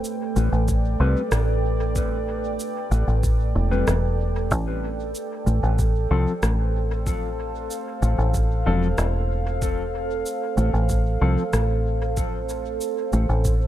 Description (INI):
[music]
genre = ambient dub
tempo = 94 BPM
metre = 4/4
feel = straight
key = unclear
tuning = A4 = 443 Hz
[part]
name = deep dark ambient pad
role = sustained chords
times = 0.0-13.7 s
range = A3 to G5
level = -28 LUFS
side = right 2 dB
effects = chorus, built-in reverb
[part]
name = electronic cabasa and rim click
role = drums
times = 0.0-13.6 s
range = none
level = -32 LUFS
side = equal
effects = dub echo
[part]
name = deep dub fingered electric bass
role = bass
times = 0.4-13.7 s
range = E1 to C2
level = -22 LUFS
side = equal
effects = none
[part]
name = electronic kick drum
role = drums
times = 0.7-13.6 s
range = none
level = -25 LUFS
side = equal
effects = none
[part]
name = mellow electric guitar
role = stabs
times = 1.0-11.4 s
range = F3 to B4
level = -29 LUFS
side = left 3 dB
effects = wide subtle chorus, dub echo
[sound]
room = little or no reverb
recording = echo-heavy mix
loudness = -20 LUFS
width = side -12 dB against mid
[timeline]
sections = 0.0-13.7 A section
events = none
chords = 0.0 Am9; 4.5 F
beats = 0.05 0.69 1.32 | 1.96 2.60 3.24 3.88 | 4.51 5.15 5.79 6.43 | 7.07 7.71 8.34 8.98 | 9.62 10.26 10.90 11.54 | 12.17 12.81 13.45